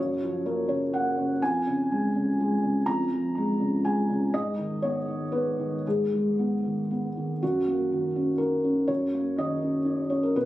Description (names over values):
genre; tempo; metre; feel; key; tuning
neoclassical minimalist piano; 113-128 BPM; 3/4; rubato; F# major; A4 = 440 Hz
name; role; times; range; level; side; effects
felt-muted upright piano; solo; 0.0-10.5 s; E#2 to A#5; -24 LUFS; equal; tape echo
room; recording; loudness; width
light reverb; recorded on a phone in the room, studio ambience; -24 LUFS; side -15 dB against mid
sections
0.0-7.4 A section; 7.4-10.5 B section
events
none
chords
0.0 F#maj7; 1.4 C#/E#; 4.3 G#m; 7.4 F#6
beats
0.45 0.92 | 1.40 1.89 2.38 | 2.86 3.35 3.83 | 4.32 4.82 5.33 | 5.85 6.38 6.90 | 7.42 7.91 8.39 | 8.89 9.38 9.86 | 10.35